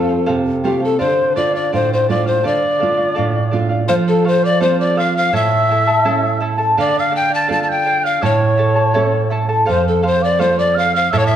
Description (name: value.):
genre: andean folk, Andean ensemble.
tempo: 83 BPM.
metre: 2/4.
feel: straight.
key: D minor.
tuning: A4 = 440 Hz.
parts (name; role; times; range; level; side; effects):
breathy polished pan flute; melody; 0.0-11.4 s; G4 to A5; -17 LUFS; left 3 dB; none.
mellow hollow quena; second line; 0.0-11.4 s; G5 to A6; -23 LUFS; right 5 dB; none.
charango; accompaniment; 0.0-11.4 s; E4 to A5; -21 LUFS; equal; none.
nylon-string guitar; accompaniment; 0.0-11.4 s; F2 to A4; -19 LUFS; right 4 dB; none.
room: wet recital hall reverb, RT60 1.4 s.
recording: dark, warm production.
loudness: -13 LUFS.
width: side -10 dB against mid.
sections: 0.0-3.9 A section; 3.9-11.4 B section.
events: none.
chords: 0.0 F; 1.0 Dm; 3.9 F; 5.3 A; 6.8 Dm; 8.2 A; 9.7 F.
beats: 0.28 | 1.00 1.72 | 2.44 3.17 | 3.89 4.61 | 5.33 6.05 | 6.78 7.50 | 8.22 8.94 | 9.66 10.39 | 11.11.